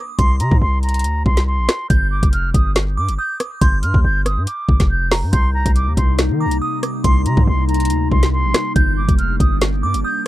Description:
hip hop, drill; 140 BPM; 4/4; half-time; C minor; A4 = 440 Hz
glassy synth bell; second line; 0.0-10.2 s; Bb5 to G6; -29 LUFS; right 3 dB; chorus, tremolo, tape echo
bright reedy concert flute; melody; 0.2-10.2 s; Bb5 to G6; -23 LUFS; right 1 dB; low-pass filter, tape echo
hard-hitting 808-style bass; bass; 0.2-10.0 s; F1 to Eb3; -18 LUFS; equal
drill drum kit; drums; 0.2-10.0 s; hi-hat, kick drum, rim click, snare drum; -16 LUFS; equal; overdrive
glassy FM pad; sustained chords; 5.7-10.3 s; C3 to Eb4; -23 LUFS; left 2 dB; ensemble chorus, built-in reverb
little or no reverb; dark, warm production; -14 LUFS; side -15 dB against mid
0.0-10.3 A section
0.0 C7(no3); 1.9 G5; 5.3 Cm7; 8.8 Gm

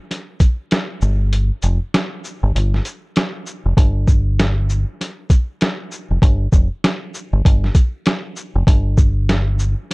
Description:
hip hop, boom-bap hip-hop; 98 BPM; 4/4; swing 60% on 16ths; A4 = 440 Hz
lo-fi sampler-style drum kit; drums; 0.1-9.9 s; hi-hat, kick drum, shaker, snare drum; -16 LUFS; equal
deep dub fingered electric bass; bass; 1.0-9.7 s; F1 to G1; -16 LUFS; equal
little or no reverb; dark, warm production; -15 LUFS; side -28 dB against mid
0.0-3.8 A section; 3.8-9.9 A section
kick muted 1.3-3.8

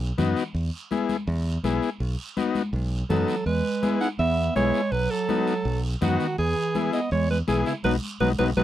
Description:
latin, cumbia; 164 BPM; 4/4; straight; E major; A4 = 440 Hz
fingered electric bass; bass; 0.0-8.6 s; B1 to F#2; -26 LUFS; right 1 dB
overdriven combo organ; accompaniment; 0.2-8.6 s; B3 to G#4; -26 LUFS; left 6 dB
congas; percussion; 0.2-8.6 s; -30 LUFS; left 3 dB
guiro; percussion; 0.2-8.6 s; -41 LUFS; right 6 dB
bright alto saxophone; melody; 3.1-8.6 s; E4 to F#5; -26 LUFS; right 1 dB
mellow bass clarinet; second line; 3.1-8.6 s; C#3 to D#4; -29 LUFS; right 7 dB
light reverb; dry, close 1970s-style studio recording; -22 LUFS; side -12 dB against mid
0.0-8.6 A section
band accent 7.8-8.6
0.0 B; 0.5 E; 2.0 B7; 3.5 E; 4.9 B7; 6.4 E; 7.8 B

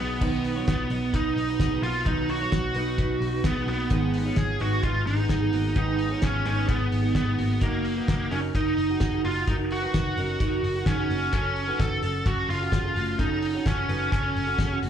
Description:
jangly indie pop; 129 BPM; 4/4; straight; A4 = 440 Hz
bluesy overdriven lead guitar; melody; 0.0-14.8 s; Bb3 to A4; -27 LUFS; right 1 dB; distortion, slapback echo
fingerpicked steel-string acoustic guitar; accompaniment; 0.0-14.9 s; Ab2 to Cb5; -33 LUFS; right 7 dB; slapback echo
twelve-string electric guitar; arpeggios; 0.0-14.9 s; A3 to F5; -34 LUFS; equal; slapback echo, tape echo
vintage muted picked electric bass; bass; 0.0-14.9 s; Gb1 to Cb2; -29 LUFS; left 1 dB
cloth-damped thuddy drum kit; drums; 0.2-14.9 s; crash cymbal, hi-hat, kick drum, ride cymbal, snare drum; -29 LUFS; left 1 dB
light reverb, small room ambience; live gig heard through the venue's PA, club reverb; -23 LUFS; side -9 dB against mid
0.2-14.9 A section
0.2 Cb; 3.9 Abm; 7.6 Ebm/Gb; 11.3 Gbm

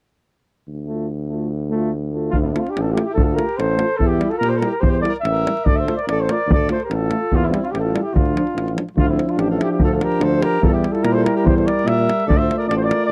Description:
balkan folk, Balkan brass band; 145 BPM; 2/4; straight; D minor; A4 = 442 Hz
clear tuba; bass; 0.7-13.1 s; A1 to Bb2; -24 LUFS; equal; tube saturation
warm euphonium; accompaniment; 0.9-13.1 s; D4 to F4; -28 LUFS; equal
warm trombone; accompaniment; 0.9-13.1 s; F3 to A3; -27 LUFS; equal
mellow flugelhorn; melody; 2.3-13.1 s; D4 to E5; -24 LUFS; equal; slapback echo
mellow alto saxophone; second line; 2.3-13.1 s; Bb3 to C5; -29 LUFS; equal
davul; percussion; 2.3-13.0 s; -22 LUFS; equal
little or no reverb; dry, close 1970s-style studio recording; -19 LUFS; mono
0.7-2.3 A section; 2.3-9.0 B section; 9.0-13.1 B section
0.7 Dm; 4.0 Edim; 5.7 Dm; 7.3 Fmaj13; 8.1 Dm; 10.6 Edim; 12.3 Dm

